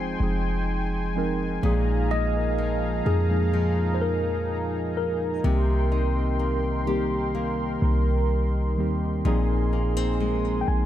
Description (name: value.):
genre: contemporary R&B.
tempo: 63 BPM.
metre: 4/4.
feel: straight.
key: unclear.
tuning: A4 = 440 Hz.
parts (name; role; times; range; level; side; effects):
mellow tine electric piano; melody; 0.0-10.9 s; Ab4 to Ab5; -30 LUFS; equal; medium stereo tremolo, ping-pong delay.
muted felt-like synth keys; accompaniment; 0.0-10.9 s; Eb3 to Bb4; -28 LUFS; right 2 dB; chorus.
warm analog pad; sustained chords; 0.0-10.9 s; Eb4 to C6; -33 LUFS; equal; chorus, tremolo.
nylon-string guitar; arpeggios; 0.0-10.9 s; Bb2 to Ab4; -32 LUFS; left 5 dB; none.
clean 808-style bass; bass; 0.0-10.9 s; F1 to F2; -25 LUFS; equal; none.
room: light reverb.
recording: none.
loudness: -22 LUFS.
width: side -12 dB against mid.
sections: 0.0-9.2 A section; 9.2-10.9 B section.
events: none.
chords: 0.0 Fm7; 1.6 Bb7sus4; 5.4 Cm7; 9.2 Bb9sus4.